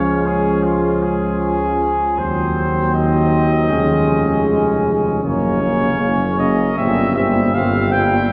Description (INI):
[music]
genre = classical, brass quintet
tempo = 78 BPM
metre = 4/4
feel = straight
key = unclear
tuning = A4 = 441 Hz
[part]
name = mellow trumpet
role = melody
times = 0.0-8.3 s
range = F4 to G5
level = -23 LUFS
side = equal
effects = none
[part]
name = warm flugelhorn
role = second line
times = 0.0-8.3 s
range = C4 to Db4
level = -26 LUFS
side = equal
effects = none
[part]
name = clear French horn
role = accompaniment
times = 0.0-8.3 s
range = Gb3 to Bb3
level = -24 LUFS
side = equal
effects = none
[part]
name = warm euphonium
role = accompaniment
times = 0.0-8.3 s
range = Bb2 to F3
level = -25 LUFS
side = equal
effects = none
[part]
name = warm tuba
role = bass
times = 0.0-8.2 s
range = F1 to Eb2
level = -22 LUFS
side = equal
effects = none
[sound]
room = wet cathedral reverb, RT60 5.3 s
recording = heard from further back in the room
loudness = -17 LUFS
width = mono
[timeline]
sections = 0.0-8.3 A section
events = none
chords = 0.0 Db; 2.2 Cdim/Eb; 3.7 Db/F; 5.2 Gb; 6.8 C5/G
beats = 0.65 1.42 | 2.18 2.94 3.71 4.48 | 5.25 6.02 6.79 7.56